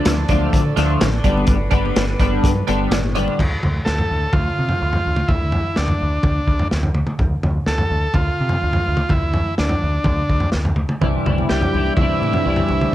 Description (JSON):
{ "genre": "psychedelic rock", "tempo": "126 BPM", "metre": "4/4", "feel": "straight", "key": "D dorian", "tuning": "A4 = 440 Hz", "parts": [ { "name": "dark chamber string section", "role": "sustained chords", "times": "0.0-3.4, 11.0-12.9 s", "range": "F3 to E5", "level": "-29 LUFS", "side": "right 2 dB", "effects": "none" }, { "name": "twelve-string electric guitar", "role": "riff", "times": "0.0-3.4, 11.0-12.9 s", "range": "C3 to E4", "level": "-20 LUFS", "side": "left 1 dB", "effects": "rotary speaker, double-tracked left and right" }, { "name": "tanpura", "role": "drone", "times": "0.0-10.1 s", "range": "D2 to D3", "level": "-33 LUFS", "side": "equal", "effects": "none" }, { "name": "deep dub picked electric bass", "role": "bass", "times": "0.1-12.8 s", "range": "G1 to D3", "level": "-22 LUFS", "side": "equal", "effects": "none" }, { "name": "crunchy breakbeat drum kit", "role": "drums", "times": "0.1-12.9 s", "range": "crash cymbal, hi-hat, kick drum, snare drum, toms", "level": "-20 LUFS", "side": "equal", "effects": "none" }, { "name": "congas", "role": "percussion", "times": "0.1-3.4, 11.4-12.8 s", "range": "none", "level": "-31 LUFS", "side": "left 9 dB", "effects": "none" }, { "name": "combo organ", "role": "melody", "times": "3.8-12.9 s", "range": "D4 to A4", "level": "-22 LUFS", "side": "equal", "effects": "slapback echo" } ], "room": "small room reverb", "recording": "none", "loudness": "-16 LUFS", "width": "side -14 dB against mid", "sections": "0.0-3.4 A section; 3.4-12.9 B section", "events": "none", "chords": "0.0 Dm; 1.2 G; 3.4 Dm; 11.0 Cadd9" }